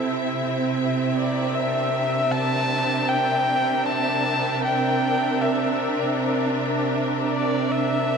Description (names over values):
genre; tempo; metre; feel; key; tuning
ambient; free time; none; none; C mixolydian; A4 = 440 Hz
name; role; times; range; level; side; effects
rich studio string section; sustained chords; 0.0-8.2 s; C3 to E5; -22 LUFS; right 1 dB; none
warm electric violin; melody; 1.2-8.2 s; D5 to A5; -25 LUFS; left 1 dB; ping-pong delay
room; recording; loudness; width
wet cathedral reverb, RT60 7.0 s; none; -20 LUFS; side -6 dB against mid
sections
0.0-8.2 A section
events
none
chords
0.0 C7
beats
free time